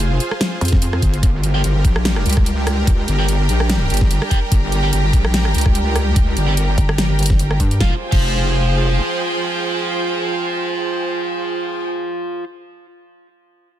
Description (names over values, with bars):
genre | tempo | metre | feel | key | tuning
heavy wobble dubstep | 146 BPM | 4/4 | swing 55% on 16ths, half-time | F minor | A4 = 441 Hz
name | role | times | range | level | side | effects
supersaw pad | sustained chords | 0.0-11.9 s | G3 to C5 | -26 LUFS | equal | sidechain pumping
wobble bass | bass | 0.0-9.0 s | F1 to Db2 | -17 LUFS | equal | chorus, overdrive
dubstep drum kit | drums | 0.0-8.2 s | crash cymbal, hi-hat, rim click, snare drum | -23 LUFS | equal | none
rich studio string section | texture | 0.0-11.9 s | D4 to Bb5 | -26 LUFS | right 3 dB | sidechain pumping
metallic wobble bass | bass | 0.6-1.0, 6.8-7.8 s | G1 to G2 | -18 LUFS | equal | distortion, chorus, overdrive
electronic kick drum | drums | 0.7-8.2 s | none | -16 LUFS | equal | none
fuzz guitar | stabs | 1.5-12.4 s | F4 to G5 | -24 LUFS | right 3 dB | distortion, tape echo
room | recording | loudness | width
digital ambience | dense, heavily limited modern master | -15 LUFS | side -12 dB against mid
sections
0.0-7.8 A section; 7.8-11.1 B section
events
drop 0.0-7.8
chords
0.0 Fm; 1.2 Gdim; 7.8 Fm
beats
0.00 0.41 0.82 | 1.23 1.64 2.05 2.46 | 2.87 3.28 3.69 4.11 | 4.52 4.93 5.34 5.75 | 6.16 6.57 6.98 7.39 | 7.80 8.22 8.63 9.04 | 9.45 9.86 10.27 10.68